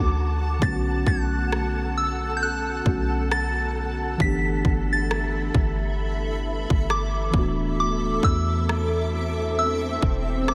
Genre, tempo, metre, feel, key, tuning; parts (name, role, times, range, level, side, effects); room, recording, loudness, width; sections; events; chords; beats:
contemporary R&B; 67 BPM; 4/4; swing 58% on 16ths; B minor; A4 = 440 Hz
soft synth bell; melody; 0.0-10.5 s; D6 to B6; -31 LUFS; equal; chorus, delay
muted felt-like synth keys; accompaniment; 0.0-10.5 s; D3 to G4; -32 LUFS; equal; chorus
granular cloud pad; sustained chords; 0.0-10.5 s; F#4 to E6; -33 LUFS; equal; built-in reverb, ensemble chorus, sidechain pumping
warm 808-style bass; bass; 0.0-10.5 s; D1 to E2; -29 LUFS; equal
trap drum kit; drums; 0.6-10.5 s; kick drum, rim click; -30 LUFS; equal
swell; sound effects; 9.2-10.5 s; -34 LUFS; equal
moderate huge ambient reverb, RT60 8.1 s; dreamy mix soaked in reverb; -24 LUFS; mono
0.0-10.5 A section
swell 9.2-10.5
0.0 Dmaj7; 0.6 Bm9; 4.2 G69; 7.3 E7sus4
| 0.62 1.51 2.41 3.31 | 4.20 5.10 5.99 6.89 | 7.78 8.68 9.57 10.47